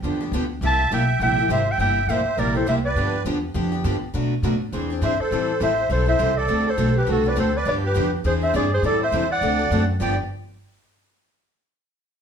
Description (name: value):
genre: acoustic string swing (jazz manouche)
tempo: 204 BPM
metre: 4/4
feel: swing 59% on 8ths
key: unclear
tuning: A4 = 439 Hz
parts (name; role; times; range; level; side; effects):
- picked steel-string acoustic guitar; accompaniment; 0.0-10.1 s; G2 to A4; -27 LUFS; left 4 dB; none
- picked steel-string acoustic guitar; accompaniment; 0.0-10.1 s; G2 to B#4; -29 LUFS; right 3 dB; none
- upright bass; bass; 0.0-10.2 s; G1 to B2; -24 LUFS; equal; none
- musette accordion; second line; 0.6-10.2 s; F#4 to E5; -27 LUFS; right 5 dB; none
- breathy clarinet; melody; 0.7-10.2 s; A4 to A5; -23 LUFS; equal; none
room: wet studio reverb, RT60 0.7 s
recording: heard from further back in the room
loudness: -19 LUFS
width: side -7 dB against mid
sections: 0.0-10.0 A section; 10.0-11.2 B section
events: none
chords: 0.0 G7; 0.6 C7; 3.0 G7; 4.1 Bm7; 4.7 Eaug7; 5.3 Am7; 6.5 D7; 7.7 G7; 8.2 E7alt; 8.8 Am7; 9.4 D7; 10.0 G7